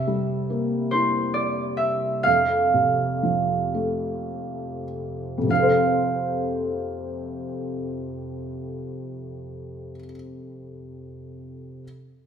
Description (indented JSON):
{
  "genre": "children's music, lullaby",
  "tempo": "46-71 BPM",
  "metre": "3/4",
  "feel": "rubato",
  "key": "F major",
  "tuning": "A4 = 440 Hz",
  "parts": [
    { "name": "concert harp", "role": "melody", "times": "0.0-10.0 s", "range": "C5 to F5", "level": "-23 LUFS", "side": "right 3 dB", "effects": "none" },
    { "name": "felt-muted upright piano", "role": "accompaniment", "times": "0.0-11.8 s", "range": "F2 to C5", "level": "-26 LUFS", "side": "left 1 dB", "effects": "none" }
  ],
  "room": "wet recital hall reverb, RT60 1.6 s",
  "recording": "minimal, uncompressed stereo recording",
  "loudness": "-22 LUFS",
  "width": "side -8 dB against mid",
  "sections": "0.0-5.5 A section; 5.5-9.3 B section",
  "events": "slowing down 0.0-5.5",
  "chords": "0.0 C7; 2.3 F",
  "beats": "0.49 1.36 | 2.26 3.23 4.29 | 5.50 6.78 8.05"
}